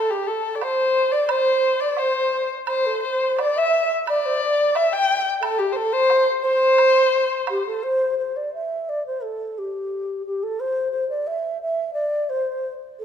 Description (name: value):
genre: chinese traditional, Chinese chamber ensemble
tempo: 88 BPM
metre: 2/4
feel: rubato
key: C gong mode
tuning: A4 = 440 Hz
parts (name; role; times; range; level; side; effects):
- mellow xiao; melody; 0.0-13.0 s; G4 to G5; -21 LUFS; right 1 dB; none
- dark erhu; second line; 0.0-7.8 s; G4 to G5; -22 LUFS; left 4 dB; none
- woodblock; percussion; 0.6-7.6 s; none; -33 LUFS; right 7 dB; none
room: moderate concert hall reverb, RT60 2.4 s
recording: minimal, uncompressed stereo recording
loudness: -19 LUFS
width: side -8 dB against mid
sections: 0.0-8.2 A section; 8.2-13.0 B section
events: none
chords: none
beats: 0.62 | 1.29 1.97 | 2.67 3.39 | 4.08 4.76 | 5.43 6.11 | 6.79 7.48 | 8.18 8.88 | 9.57 10.25 | 10.92 11.60 | 12.30 13.01